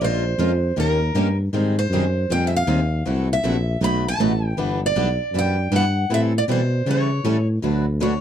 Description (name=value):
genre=acoustic string swing (jazz manouche)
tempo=158 BPM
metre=4/4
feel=swing 63% on 8ths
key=unclear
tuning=A4 = 440 Hz
part: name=picked steel-string acoustic guitar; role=melody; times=0.0-8.2 s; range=Bb4 to B5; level=-24 LUFS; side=right 1 dB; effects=none
part: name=picked steel-string acoustic guitar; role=accompaniment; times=0.0-8.1 s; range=B2 to B4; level=-26 LUFS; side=right 5 dB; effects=none
part: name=picked swing-style acoustic guitar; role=accompaniment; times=0.0-8.1 s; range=B2 to B4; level=-28 LUFS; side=left 6 dB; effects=none
part: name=breathy tuba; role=bass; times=0.0-8.2 s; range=G1 to C#3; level=-21 LUFS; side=equal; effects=none
room=light reverb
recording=close, detailed microphones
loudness=-18 LUFS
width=side -9 dB against mid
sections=0.0-7.6 A section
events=none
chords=0.0 Bbm7; 0.8 Eb7; 1.5 Abmaj7; 3.1 F#m7b5; 3.8 B7; 4.6 Em7; 6.1 Am7; 6.9 A7; 7.6 D6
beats=| 0.01 0.39 0.77 1.15 | 1.53 1.91 2.29 2.67 | 3.06 3.44 3.82 4.20 | 4.58 4.96 5.34 5.72 | 6.10 6.48 6.86 7.24 | 7.62 8.01